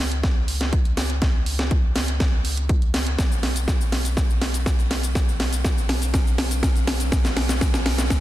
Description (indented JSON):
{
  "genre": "progressive house",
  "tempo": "122 BPM",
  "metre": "4/4",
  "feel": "straight",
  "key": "unclear",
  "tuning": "A4 = 438 Hz",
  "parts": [
    { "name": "round analog bass", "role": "bass", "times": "0.0-8.2 s", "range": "B1 to C#2", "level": "-26 LUFS", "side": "equal", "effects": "sidechain pumping" },
    { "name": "house drum kit", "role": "drums", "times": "0.1-8.2 s", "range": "hi-hat, shaker, snare drum", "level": "-24 LUFS", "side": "equal", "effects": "overdrive" },
    { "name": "electronic kick drum", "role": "drums", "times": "0.2-8.2 s", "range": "none", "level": "-21 LUFS", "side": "equal", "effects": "overdrive" }
  ],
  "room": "light reverb",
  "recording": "dense, heavily limited modern master",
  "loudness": "-19 LUFS",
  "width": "side -14 dB against mid",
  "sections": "0.0-8.2 A section",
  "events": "build-up 0.0-8.2; drum fill 0.0-8.2",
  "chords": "none"
}